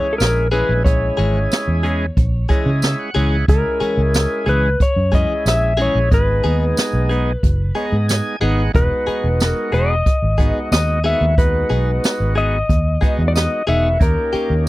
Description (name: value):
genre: straight-eighth soul blues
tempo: 91 BPM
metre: 4/4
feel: straight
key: unclear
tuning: A4 = 440 Hz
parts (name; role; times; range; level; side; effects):
- clean lap steel guitar; melody; 0.0-14.6 s; A4 to E5; -21 LUFS; left 2 dB; none
- overdriven tonewheel organ; accompaniment; 0.0-14.7 s; D#3 to G#5; -24 LUFS; right 3 dB; slow rotary speaker
- direct-recorded clean electric guitar; stabs; 0.0-14.5 s; E3 to G#4; -23 LUFS; left 3 dB; phaser
- vintage muted fingered electric bass; bass; 0.2-14.7 s; E1 to C#3; -18 LUFS; equal; none
- jazz brush drum kit; drums; 0.2-14.5 s; hi-hat, kick drum, snare drum, tambourine; -17 LUFS; equal; none
room: little or no reverb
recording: dry, close 1970s-style studio recording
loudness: -15 LUFS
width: side -17 dB against mid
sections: 0.0-14.7 A section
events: tonewheel organ fill 2.2-3.5, 7.4-8.7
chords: 0.0 C#m; 6.1 G#m; 8.7 Emaj7; 14.0 D#7